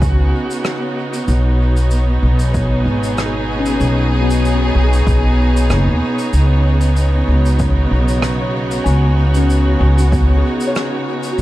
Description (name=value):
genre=ambient dub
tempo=95 BPM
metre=4/4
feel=swing 54% on 16ths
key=unclear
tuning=A4 = 441 Hz
part: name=clear studio string section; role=sustained chords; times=0.0-11.4 s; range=Cb3 to Db5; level=-19 LUFS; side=right 1 dB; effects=none
part: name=soft synth bell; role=arpeggios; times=0.0-11.4 s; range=Cb4 to Ab5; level=-24 LUFS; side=left 4 dB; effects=chorus, phaser, tape echo
part: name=upright bass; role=bass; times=0.0-11.4 s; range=Gb1 to Eb2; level=-14 LUFS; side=equal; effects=none
part: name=electronic kick drum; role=drums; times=0.0-10.3 s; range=none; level=-20 LUFS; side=equal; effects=overdrive
part: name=shaker and rim click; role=drums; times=0.0-11.4 s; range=none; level=-28 LUFS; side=equal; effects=dub echo
room=small room ambience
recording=dark, warm production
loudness=-13 LUFS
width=side -16 dB against mid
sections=0.0-11.4 A section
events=none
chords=0.0 Db9sus4; 1.3 Cb6; 6.3 Db9sus4